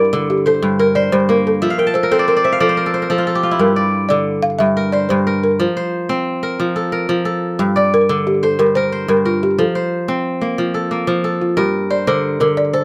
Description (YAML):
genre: west african traditional, West African string and xylophone music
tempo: 120 BPM (dotted quarters)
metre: 12/8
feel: straight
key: G dorian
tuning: A4 = 439 Hz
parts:
  - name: balafon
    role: melody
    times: 0.0-12.8 s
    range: F4 to F5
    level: -19 LUFS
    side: equal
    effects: slapback echo
  - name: kora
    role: arpeggios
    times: 0.0-12.8 s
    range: G2 to A5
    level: -19 LUFS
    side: equal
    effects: none
room: light reverb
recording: close, detailed microphones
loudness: -16 LUFS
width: mono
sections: 0.0-11.6 A section; 11.6-12.8 B section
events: kora fill 1.6-3.6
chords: 0.0 Gm; 1.6 F; 3.6 Gm; 5.6 F; 7.6 Gm; 9.6 F; 11.6 Gm